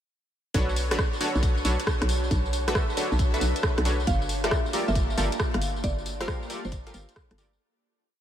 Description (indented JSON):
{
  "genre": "UK garage, two-step garage",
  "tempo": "136 BPM",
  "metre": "4/4",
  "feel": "swing 67% on 16ths",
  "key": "B minor",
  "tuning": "A4 = 441 Hz",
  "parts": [
    { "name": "ethereal airy pad", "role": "sustained chords", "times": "1.1-7.6 s", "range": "Bb3 to A5", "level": "-37 LUFS", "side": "right 1 dB", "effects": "ensemble chorus, built-in reverb, sidechain pumping" },
    { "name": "punchy chord stab", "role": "stabs", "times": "0.5-7.5 s", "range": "D4 to F5", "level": "-30 LUFS", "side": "equal", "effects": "chorus, ping-pong delay" },
    { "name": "hollow knocking FM bass", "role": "bass", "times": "0.5-7.6 s", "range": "F1 to B1", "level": "-27 LUFS", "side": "equal", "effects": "none" },
    { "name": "electronic kick drum", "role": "drums", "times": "0.5-7.3 s", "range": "none", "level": "-28 LUFS", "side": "equal", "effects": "none" },
    { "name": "house drum kit", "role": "drums", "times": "0.5-7.6 s", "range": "hi-hat, rim click, tambourine", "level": "-31 LUFS", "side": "equal", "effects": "none" },
    { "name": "mallet-like synth pluck", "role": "melody", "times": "4.1-7.5 s", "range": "A4 to F5", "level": "-35 LUFS", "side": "right 1 dB", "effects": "analog chorus, vintage 12-bit sampler grit, ping-pong delay" }
  ],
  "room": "light reverb, digital ambience",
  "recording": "none",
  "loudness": "-23 LUFS",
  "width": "side -10 dB against mid",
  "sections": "0.5-7.6 drop",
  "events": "drop 0.5-7.6; fade-out 5.2-7.6",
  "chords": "0.5 Bm9; 4.1 Gm9"
}